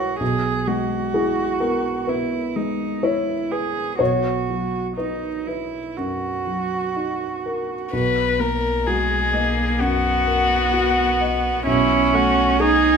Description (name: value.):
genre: neoclassical piano and strings.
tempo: 63 BPM.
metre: 4/4.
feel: uneven beats, rubato.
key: B major.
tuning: A4 = 440 Hz.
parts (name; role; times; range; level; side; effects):
warm cello; second line; 0.0-13.0 s; G#3 to G#4; -23 LUFS; right 6 dB; none.
dark baby grand piano; accompaniment; 0.0-13.0 s; B1 to G#5; -24 LUFS; left 1 dB; none.
warm violin; melody; 7.9-13.0 s; E4 to B4; -20 LUFS; left 4 dB; none.
rich double bass; bass; 7.9-13.0 s; B1; -26 LUFS; left 1 dB; none.
room: moderate recital hall reverb, RT60 1.3 s.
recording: minimal, uncompressed stereo recording.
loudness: -19 LUFS.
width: side -6 dB against mid.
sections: 0.0-7.9 A section; 7.9-13.0 A section.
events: none.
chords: 0.2 E/B; 4.0 B; 7.9 Bmaj7; 11.7 Amaj7/B.